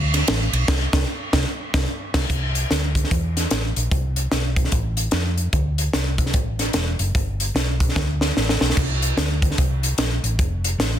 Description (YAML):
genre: uptempo gospel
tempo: 148 BPM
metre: 4/4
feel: swing 62% on 8ths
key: C major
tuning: A4 = 441 Hz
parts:
  - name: hollow-body short-scale fingered electric bass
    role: bass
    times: 0.0-11.0 s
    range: E1 to F2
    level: -22 LUFS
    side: equal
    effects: none
  - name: crisp fusion drum kit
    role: drums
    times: 0.1-10.9 s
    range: crash cymbal, hi-hat, kick drum, ride cymbal, snare drum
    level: -21 LUFS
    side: equal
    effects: none
room: light reverb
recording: dense, heavily limited modern master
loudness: -19 LUFS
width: side -10 dB against mid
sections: 0.0-2.3 A section; 2.3-11.0 B section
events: band accent 0.7-2.3; drum fill 8.0-8.8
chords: none